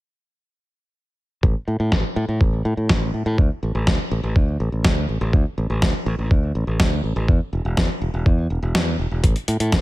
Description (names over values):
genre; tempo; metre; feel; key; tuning
italo disco; 123 BPM; 4/4; straight; unclear; A4 = 440 Hz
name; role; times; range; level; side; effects
modern bright fingered electric bass; bass; 1.4-9.8 s; E1 to A2; -22 LUFS; equal; none
electronic kick drum; drums; 1.4-9.8 s; none; -18 LUFS; equal; none
clean 12-bit digital drum machine; drums; 1.9-9.8 s; hi-hat, snare drum; -23 LUFS; equal; low-pass filter on snare, low-pass filter on hats, low-pass filter on room
room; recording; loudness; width
little or no reverb; none; -18 LUFS; side -18 dB against mid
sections
1.4-9.2 A section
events
kick drops out 8.7-9.2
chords
none